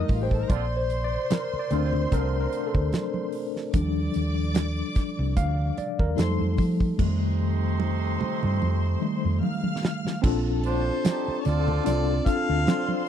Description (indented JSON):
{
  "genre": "lush 1970s-style soul",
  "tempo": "74 BPM",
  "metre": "4/4",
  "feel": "swing 54% on 16ths",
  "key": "Bb major",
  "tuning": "A4 = 440 Hz",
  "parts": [
    { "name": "warm studio string section", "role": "second line", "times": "0.0-13.1 s", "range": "Eb4 to F6", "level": "-36 LUFS", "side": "left 1 dB", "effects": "none" },
    { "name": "mellow tine electric piano", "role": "accompaniment", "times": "0.0-13.1 s", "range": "Eb3 to F5", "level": "-28 LUFS", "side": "left 3 dB", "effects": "overdrive, medium stereo tremolo" },
    { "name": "hollow-body short-scale fingered electric bass", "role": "bass", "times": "0.1-12.6 s", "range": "A1 to F3", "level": "-26 LUFS", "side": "equal", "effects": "none" },
    { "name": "damped 70s drum kit", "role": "drums", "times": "0.1-13.1 s", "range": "crash cymbal, hi-hat, kick drum, snare drum", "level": "-25 LUFS", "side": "right 1 dB", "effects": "none" },
    { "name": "warm horn section", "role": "stabs", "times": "0.5-13.1 s", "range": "A2 to G4", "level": "-34 LUFS", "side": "right 15 dB", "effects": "none" },
    { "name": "congas", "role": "percussion", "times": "0.5-13.1 s", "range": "none", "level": "-32 LUFS", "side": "right 6 dB", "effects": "none" },
    { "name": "mellow harmonica", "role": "melody", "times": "10.7-13.1 s", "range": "C5 to F5", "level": "-29 LUFS", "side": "left 1 dB", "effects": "none" }
  ],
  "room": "studio reverb",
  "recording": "dry, close 1970s-style studio recording",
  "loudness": "-23 LUFS",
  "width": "side -9 dB against mid",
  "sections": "0.0-7.0 A section; 7.0-10.2 B section; 10.2-13.1 C section",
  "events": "tine electric piano solo 0.0-7.0, 7.0-10.2; drum fill 7.0-10.2",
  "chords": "0.0 F7; 0.5 Bbmaj9; 3.7 Ebmaj9; 6.2 F7; 10.2 Bbmaj9"
}